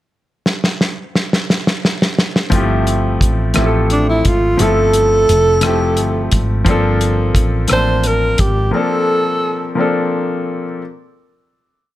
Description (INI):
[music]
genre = slow six-eight R&B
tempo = 58 BPM (dotted quarters)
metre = 6/8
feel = straight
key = G dorian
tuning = A4 = 438 Hz
[part]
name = warm soul drum kit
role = drums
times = 0.5-8.5 s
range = hi-hat, kick drum, rim click, snare drum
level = -16 LUFS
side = equal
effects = none
[part]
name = clear baby grand piano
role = accompaniment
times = 2.5-10.8 s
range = F3 to A5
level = -17 LUFS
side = left 2 dB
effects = none
[part]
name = woody fretless electric bass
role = bass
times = 2.5-8.7 s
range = F1 to A1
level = -17 LUFS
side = equal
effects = none
[part]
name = breathy tenor saxophone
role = melody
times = 3.9-9.7 s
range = D4 to C5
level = -15 LUFS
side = right 1 dB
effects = slapback echo
[sound]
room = light reverb, small room reverb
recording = none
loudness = -13 LUFS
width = side -14 dB against mid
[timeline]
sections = 0.5-2.5 pickup bar; 2.5-10.8 verse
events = drum fill 0.5-2.5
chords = 0.5 N.C.; 2.5 Fmaj9/G; 6.7 Gm11